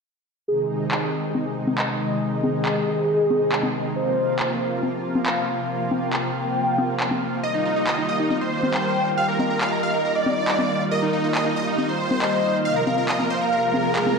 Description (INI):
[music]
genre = uplifting trance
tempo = 138 BPM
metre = 4/4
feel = straight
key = Eb major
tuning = A4 = 439 Hz
[part]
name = warm velvety synth lead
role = second line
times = 0.5-14.2 s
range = Ab4 to G5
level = -25 LUFS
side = equal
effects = chorus, diffuse ambient delay
[part]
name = analog string pad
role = sustained chords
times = 0.5-14.1 s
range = C3 to F4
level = -25 LUFS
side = equal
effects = ensemble chorus
[part]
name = electronic handclaps and congas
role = drums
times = 0.9-14.2 s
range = none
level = -26 LUFS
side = left 1 dB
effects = low-pass filter on snare, low-pass filter on perc
[part]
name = dense compressed supersaw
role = melody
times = 7.4-14.2 s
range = Eb4 to F5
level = -25 LUFS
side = equal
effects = analog delay
[part]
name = plucky unison lead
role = second line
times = 7.4-14.2 s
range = Eb5 to F6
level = -32 LUFS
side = left 1 dB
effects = analog delay
[part]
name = swell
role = sound effects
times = 13.6-14.2 s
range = none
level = -25 LUFS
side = right 3 dB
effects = none
[sound]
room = wet lush hall reverb, RT60 1.6 s, digital ambience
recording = dreamy mix soaked in reverb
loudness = -20 LUFS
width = side -4 dB against mid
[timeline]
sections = 0.5-14.2 A section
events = swell 13.6-14.2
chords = 0.5 Ab; 4.0 Bbsus2; 7.4 Ebadd9; 12.7 Bbsus2